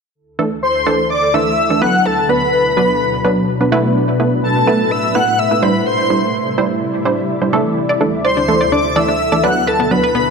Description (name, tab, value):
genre	house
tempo	126 BPM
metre	4/4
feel	straight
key	D mixolydian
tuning	A4 = 440 Hz
part	shimmering ambient pad	sustained chords	0.7-10.3 s	D2 to D5	-19 LUFS	left 1 dB	chorus, built-in reverb
part	wide unison pluck	stabs	0.4-10.0 s	E3 to C5	-18 LUFS	right 3 dB	tape echo
part	wide unison lead	melody	0.6-10.3 s	A4 to F#5	-17 LUFS	left 1 dB	ensemble chorus, vintage 12-bit sampler grit, digital delay
part	airy dreamy lead	second line	0.6-10.3 s	A5 to F#6	-20 LUFS	left 2 dB	chorus, tape echo
part	analog pluck	arpeggios	7.9-10.3 s	B3 to D5	-19 LUFS	left 2 dB	chorus, tape echo
room	moderate lush hall reverb, RT60 2.3 s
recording	none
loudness	-13 LUFS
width	side -5 dB against mid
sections	0.1-10.3 A section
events	filter sweep on ambient pad 0.1-10.3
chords	0.1 Dsus2; 2.1 Bm; 4.0 Asus2; 5.9 Cadd9; 7.8 Dsus2; 9.7 Bm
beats	| 0.15 0.63 1.10 1.58 | 2.06 2.53 3.01 3.48 | 3.96 4.44 4.91 5.39 | 5.86 6.34 6.82 7.29 | 7.77 8.24 8.72 9.20 | 9.67 10.15